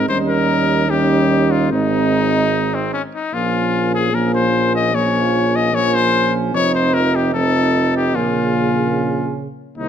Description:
classical, brass quintet; 74 BPM; 4/4; straight; A4 = 444 Hz
clear trumpet; melody; 0.0-9.9 s; C4 to Eb5; -19 LUFS; left 5 dB
warm flugelhorn; second line; 0.0-9.9 s; C4 to Eb4; -24 LUFS; right 8 dB
dark French horn; accompaniment; 0.0-9.9 s; Bb3 to Db4; -21 LUFS; left 2 dB
dark trombone; accompaniment; 0.0-9.9 s; Db3 to Ab3; -24 LUFS; right 5 dB
warm tuba; bass; 0.0-9.9 s; F1 to Eb2; -22 LUFS; right 4 dB
moderate recital hall reverb, RT60 1.4 s; close, detailed microphones; -14 LUFS; side -9 dB against mid
0.0-9.9 A section
0.1 Eb7; 1.7 Ab; 3.3 Bbm; 6.5 F5; 8.2 Bbm

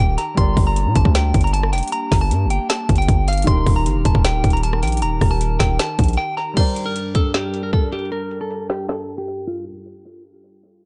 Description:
hip hop, trap; 155 BPM; 4/4; half-time; G minor; A4 = 436 Hz
clean electric guitar; melody; 0.0-9.6 s; F4 to C6; -26 LUFS; equal; tape echo
warbly tape-like pad; sustained chords; 0.0-9.6 s; G2 to Bb4; -33 LUFS; equal; chorus, built-in reverb
hard-hitting 808-style bass; bass; 0.0-6.2 s; D1 to Bb2; -21 LUFS; equal
trap drum kit; drums; 0.2-9.7 s; crash cymbal, hi-hat, kick drum, rim click, snare drum; -21 LUFS; equal
dark grand piano; accompaniment; 0.3-9.7 s; Eb3 to D5; -32 LUFS; equal
little or no reverb; echo-heavy mix, low-pass filter, nothing above 10.3 kHz; -19 LUFS; mono
0.0-6.6 A section; 6.6-9.7 B section
break 6.2-6.6; filter sweep 6.6-9.7
0.4 Gm; 3.5 Eb; 6.6 Gm

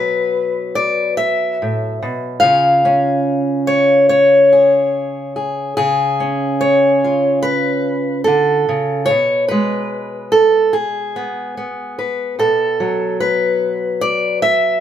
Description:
folk, solo fingerstyle acoustic guitar; 73 BPM; 4/4; straight; A4 = 440 Hz
fingerpicked steel-string acoustic guitar; solo; 0.0-14.8 s; A2 to E#5; -14 LUFS; equal
moderate stone room reverb, RT60 1.0 s; band playing live in one room; -13 LUFS; side -10 dB against mid
0.0-14.8 A section
0.0 B5; 2.4 C#; 9.1 Amaj7sus2/B; 12.4 B5

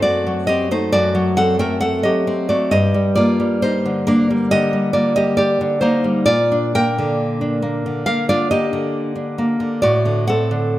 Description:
romantic piece for solo classical guitar; 67 BPM; 4/4; rubato; G minor; A4 = 440 Hz
nylon-string guitar; solo; 0.0-10.8 s; F#2 to G5; -15 LUFS; equal
moderate scoring stage reverb, RT60 1.9 s; close, detailed microphones; -15 LUFS; side -14 dB against mid
0.0-10.8 A section
0.0 D7b9/F#; 2.7 Gm; 6.3 Bb; 9.8 D7/A

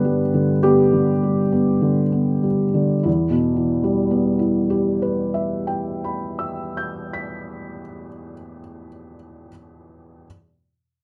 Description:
neoclassical minimalist piano; 49 BPM; 4/4; rubato; E minor; A4 = 440 Hz
felt-muted upright piano; solo; 0.0-10.3 s; E2 to B6; -21 LUFS; equal
moderate studio reverb, RT60 0.5 s; rough home demo mix; -20 LUFS; mono
0.0-3.1 A section; 3.1-8.0 B section
slowing down 0.0-3.1
0.0 G; 3.1 Em

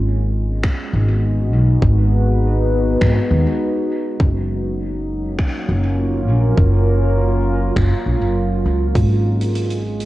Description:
ambient dub; 101 BPM; 4/4; straight; G# dorian; A4 = 440 Hz
warbly tape-like pad; sustained chords; 0.0-10.1 s; F#3 to B4; -21 LUFS; equal; chorus, built-in reverb, vintage 12-bit sampler grit, cassette tape
upright bass; bass; 0.0-10.1 s; F#1 to D#2; -16 LUFS; equal
electronic kick drum; drums; 0.6-9.1 s; -18 LUFS; equal; studio reverb, cassette tape
soft-mallet drum kit; drums; 0.6-10.1 s; finger snaps, hi-hat; -32 LUFS; equal; studio reverb, cassette tape, dub echo
light reverb; home recording on cassette, nothing above 10.9 kHz; -15 LUFS; side -16 dB against mid
0.0-10.1 A section
0.0 G#m7; 4.2 F#maj7; 9.0 G#m7

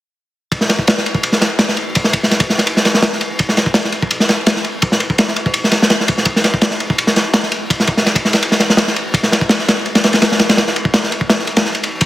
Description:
drum and bass; 167 BPM; 4/4; straight
crunchy breakbeat drum kit; drums; 0.5-12.1 s; kick drum, ride cymbal, snare drum; -12 LUFS; equal; high-pass filter on kick, high-pass filter on cymbals, high-pass filter on snare, high-pass filter on room
light reverb; dense, heavily limited modern master; -12 LUFS; side -15 dB against mid
0.5-12.1 A section

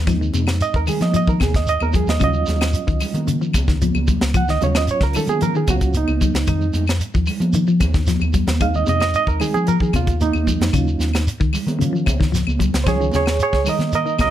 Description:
afrobeat; 113 BPM; 4/4; straight; Eb dorian; A4 = 440 Hz
hollow-body short-scale fingered electric bass; bass; 0.0-14.3 s; Db2 to F3; -21 LUFS; equal
barky reed electric piano; accompaniment; 0.1-14.3 s; Gb3 to Gb5; -22 LUFS; right 5 dB; fast tremolo
semi-hollow electric guitar; arpeggios; 0.1-14.3 s; Bb2 to Ab3; -24 LUFS; left 7 dB
tight funk drum kit; drums; 0.1-14.3 s; hi-hat, kick drum, snare drum; -22 LUFS; equal
claves; percussion; 0.1-14.3 s; -31 LUFS; left 7 dB
shekere; percussion; 0.1-14.3 s; -28 LUFS; right 2 dB
congas; percussion; 0.4-14.3 s; -28 LUFS; right 4 dB
light reverb; -16 LUFS; side -12 dB against mid
0.0-14.3 A section
reed electric piano solo 0.0-14.3
0.0 Fm7; 2.2 Ebm9; 6.5 Fm7; 10.7 Ebm9

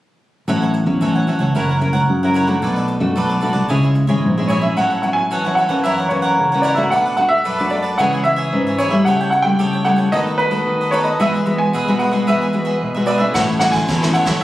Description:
samba and choro; 112 BPM; 4/4; straight; A major; A4 = 440 Hz
cavaquinho; accompaniment; 0.5-14.4 s; D4 to G5; -22 LUFS; right 1 dB
nylon-string guitar; accompaniment; 0.5-14.4 s; F#2 to A#4; -19 LUFS; left 1 dB
fingered electric bass; bass; 0.5-4.7, 13.4-14.1 s; F#1 to F#2; -18 LUFS; equal
clear baby grand piano; melody; 4.5-14.4 s; B4 to G#5; -18 LUFS; right 1 dB
jazz brush drum kit; drums; 13.3-14.4 s; kick drum, ride cymbal, rim click; -21 LUFS; equal
moderate studio reverb, RT60 0.8 s; recorded on a phone in the room, studio reverb; -14 LUFS; side -15 dB against mid
0.5-4.8 A section; 4.8-14.4 B section
0.5 A6; 1.6 F#7; 2.6 Bm7; 3.7 C#m; 4.8 A6; 5.8 F#7; 6.9 Bm7; 8.0 C#m; 9.1 A7/C#; 10.1 B7/D#; 11.2 Eadd9; 13.4 A

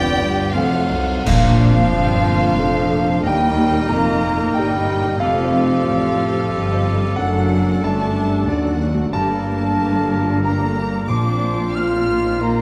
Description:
cinematic, emotional film score for orchestra; 91 BPM; 3/4; rubato; Bb major; A4 = 437 Hz
rich studio violin section; melody; 0.0-12.6 s; Bb4 to G5; -34 LUFS; equal
clear oboe; second line; 0.0-12.6 s; F4 to C5; -32 LUFS; equal
mellow wooden flute; second line; 0.0-12.6 s; D5 to F6; -28 LUFS; equal
rich studio violin section; second line; 0.0-12.6 s; C5 to F6; -34 LUFS; equal
rich studio viola section; accompaniment; 0.0-12.6 s; D3 to A4; -30 LUFS; equal
warm concert grand piano; accompaniment; 0.0-12.6 s; Bb1 to F6; -25 LUFS; equal
warm French horn section; sustained chords; 0.0-12.6 s; D3 to B4; -26 LUFS; equal
rich studio cello section; bass; 0.0-12.6 s; C2 to Bb2; -26 LUFS; equal
warm studio double bass section; bass; 0.0-12.6 s; F1 to Eb2; -26 LUFS; equal
warm clarinet; second line; 1.3-12.6 s; D4 to G4; -28 LUFS; equal
clash cymbals and concert bass drum; percussion; 1.3-2.5 s; -26 LUFS; equal
timpani; percussion; 11.1-12.0 s; Bb2; -27 LUFS; equal
moderate scoring stage reverb, RT60 1.7 s; vinyl crackle; -18 LUFS; mono
0.0-1.3 A section; 1.3-12.6 B section
band accent 1.3-1.9
0.0 G7; 0.6 F7; 1.3 Bbadd9; 3.2 Eb; 5.2 Fadd9; 7.2 D/F#; 9.1 Gmadd9; 11.1 Bbadd9

